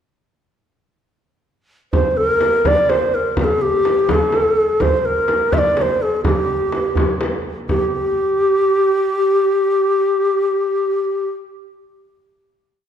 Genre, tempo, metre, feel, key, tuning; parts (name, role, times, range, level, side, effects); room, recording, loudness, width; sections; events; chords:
Persian modal ensemble; 83 BPM (dotted quarters); 6/8; straight; G dastgah shur; A4 = 440 Hz
breathy bright low ney; melody; 1.9-11.3 s; G4 to E5; -16 LUFS; equal; slapback echo
frame drum; percussion; 1.9-7.9 s; -23 LUFS; left 2 dB
tombak; percussion; 1.9-7.9 s; -24 LUFS; right 3 dB
wet recital hall reverb, RT60 1.8 s; -15 LUFS; side -8 dB against mid
1.9-7.7 A section; 7.7-10.6 final note